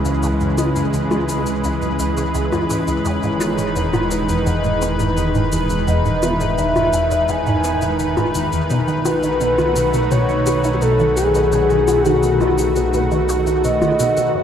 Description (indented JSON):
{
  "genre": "ambient, sequencer-driven space music",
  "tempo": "85 BPM",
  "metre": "4/4",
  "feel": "straight",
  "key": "unclear",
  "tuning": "A4 = 440 Hz",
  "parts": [
    { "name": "lush unison pad", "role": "sustained chords", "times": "0.0-14.4 s", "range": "C#3 to B4", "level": "-20 LUFS", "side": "equal", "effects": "chorus" },
    { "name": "fat analog bass", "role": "bass", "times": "0.0-14.4 s", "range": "E1 to C#2", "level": "-24 LUFS", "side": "equal", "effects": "none" },
    { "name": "resonant blip pluck", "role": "riff", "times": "0.1-14.4 s", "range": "C#2 to F#4", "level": "-22 LUFS", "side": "equal", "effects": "phaser, ensemble chorus, cassette tape, tape echo" },
    { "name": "shaker and bongos", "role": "percussion", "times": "0.1-14.3 s", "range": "none", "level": "-26 LUFS", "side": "left 2 dB", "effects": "tape echo" },
    { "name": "expressive synth lead", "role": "melody", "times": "3.1-14.4 s", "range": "F#4 to G#5", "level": "-19 LUFS", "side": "left 1 dB", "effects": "lush chorus, tape echo" }
  ],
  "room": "wet huge ambient reverb, RT60 8.5 s",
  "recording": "dark, warm production",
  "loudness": "-15 LUFS",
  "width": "side -8 dB against mid",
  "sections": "0.0-14.3 A section",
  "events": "none",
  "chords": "0.0 C#m7; 3.1 Emaj7; 8.7 B7",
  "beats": "| 0.23 0.94 1.64 2.35 | 3.05 3.76 4.47 5.17 | 5.88 6.58 7.29 8.00 | 8.70 9.41 10.11 10.82 | 11.52 12.23 12.94 13.64 | 14.35"
}